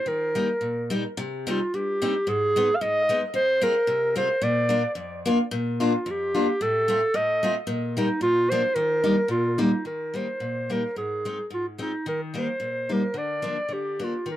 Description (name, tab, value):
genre	alpine folk, alpine dance band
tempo	110 BPM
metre	2/4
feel	swing 54% on 8ths, rubato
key	Eb major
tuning	A4 = 444 Hz
part	warm clarinet	melody	0.0-14.4 s	Eb4 to F5	-24 LUFS	right 1 dB	tape echo
part	picked steel-string acoustic guitar	accompaniment	0.1-14.4 s	F2 to F4	-27 LUFS	left 1 dB	none
room	light reverb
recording	dry, close 1970s-style studio recording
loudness	-22 LUFS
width	side -13 dB against mid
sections	0.0-1.2 A section; 1.2-9.8 A section; 9.8-14.4 B section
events	none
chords	0.1 Eb; 1.2 Cm; 2.3 Abm; 3.3 Fm; 4.4 Bb; 6.6 F/A; 7.7 Eb/Bb; 8.2 Bb; 8.7 Eb; 11.0 Ab; 12.1 Eb; 13.2 Bb/D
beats	| 0.07 0.62 | 1.17 1.72 | 2.27 2.81 | 3.34 3.88 | 4.42 4.96 | 5.52 6.06 | 6.60 7.14 | 7.67 8.20 | 8.74 9.28 | 9.84 10.40 | 10.96 11.51 | 12.06 12.61 | 13.16 13.72 | 14.29